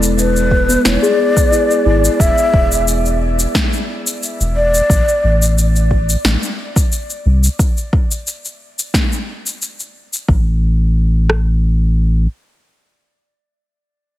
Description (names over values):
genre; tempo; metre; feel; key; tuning
organic downtempo; 89 BPM; 4/4; swing 53% on 16ths; unclear; A4 = 440 Hz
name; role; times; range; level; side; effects
steel tongue drum; arpeggios; 0.0-2.0 s; G#3 to G#4; -18 LUFS; left 2 dB; digital delay, shimmer reverb
warm sub bass; bass; 0.0-12.3 s; E1 to C2; -14 LUFS; equal; sidechain pumping
electronic shaker and snare drum; drums; 0.0-10.3 s; none; -19 LUFS; left 1 dB; overdrive
breathy mellow ney; melody; 0.2-5.5 s; B4 to E5; -18 LUFS; equal; digital delay, shimmer reverb
deep house drum kit; drums; 0.5-11.5 s; kick drum, rim click; -15 LUFS; equal; overdrive
room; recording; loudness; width
light reverb, digital ambience; heavily compressed radio sound, multiband compression; -13 LUFS; side -14 dB against mid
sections
0.0-10.3 A section; 10.3-13.0 B section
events
none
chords
0.0 E7(no3); 4.9 N.C.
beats
0.17 0.85 1.52 | 2.20 2.87 3.54 4.22 | 4.89 5.57 6.24 6.92 | 7.59 8.26 8.94 9.61 | 10.29 10.96 11.63